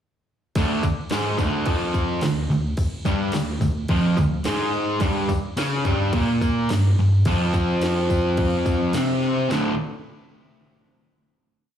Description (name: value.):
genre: garage rock duo or trio.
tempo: 107 BPM.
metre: 4/4.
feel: straight.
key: unclear.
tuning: A4 = 440 Hz.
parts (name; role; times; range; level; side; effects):
fuzz guitar; riff; 0.6-9.7 s; D2 to C#4; -20 LUFS; equal; distortion, slapback echo.
garage drum kit; drums; 0.6-9.6 s; crash cymbal, kick drum, snare drum; -26 LUFS; equal; none.
tambourine; percussion; 0.6-9.8 s; none; -44 LUFS; left 3 dB; none.
room: little or no reverb.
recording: live gig heard through the venue's PA, club reverb.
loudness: -19 LUFS.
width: side -9 dB against mid.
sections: 0.6-9.5 riff; 9.5-11.7 final chord.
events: none.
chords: 0.6 Ddim; 5.0 Fsus24; 9.5 D5.